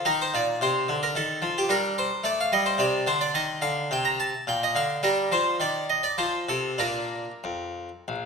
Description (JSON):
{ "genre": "classical, baroque-style suite movement for harpsichord", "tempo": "92-112 BPM", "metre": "3/4", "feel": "rubato", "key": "Bb major", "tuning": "A4 = 440 Hz", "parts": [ { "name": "harpsichord", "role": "solo", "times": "0.0-8.3 s", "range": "Bb1 to Bb5", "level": "-23 LUFS", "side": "equal", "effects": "none" } ], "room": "wet recital hall reverb, RT60 1.6 s", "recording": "minimal, uncompressed stereo recording", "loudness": "-23 LUFS", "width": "side -5 dB against mid", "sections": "0.0-8.3 A section", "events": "none", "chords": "0.1 Eb5; 1.7 G5; 2.8 Csus2; 3.3 Cm13; 4.5 Bb; 5.0 Gm; 5.6 N.C.; 6.2 F; 6.8 Bb" }